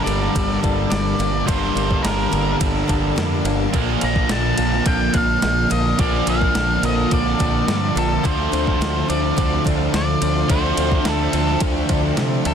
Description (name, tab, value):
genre	rock, shoegaze and dream pop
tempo	106 BPM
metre	4/4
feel	straight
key	G minor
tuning	A4 = 445 Hz
part	octave-fuzz lead guitar	melody	0.0-12.5 s	A4 to Bb5	-24 LUFS	left 1 dB	distortion, analog delay
part	string machine, violins	sustained chords	0.0-12.5 s	F4 to A5	-29 LUFS	left 1 dB	ensemble chorus
part	picked twelve-string acoustic guitar	arpeggios	0.0-12.5 s	F3 to A4	-30 LUFS	left 11 dB	analog chorus, analog delay
part	biting overdriven guitar	riff	0.0-12.5 s	G2 to D4	-23 LUFS	right 11 dB	reverse reverb
part	thick fuzz guitar	riff	0.0-12.5 s	G2 to D4	-25 LUFS	left 12 dB	distortion, ensemble chorus
part	growling fingered electric bass	bass	0.1-12.5 s	G1 to C3	-24 LUFS	equal	overdrive
part	crisp 8-bit digital drum machine	drums	0.1-12.5 s	kick drum, ride cymbal, snare drum	-24 LUFS	equal	overdrive
room	digital ambience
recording	dense, heavily limited modern master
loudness	-16 LUFS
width	side -8 dB against mid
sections	0.0-12.5 A section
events	none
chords	0.0 Gmadd9; 3.7 Bbmaj7; 8.2 Dm7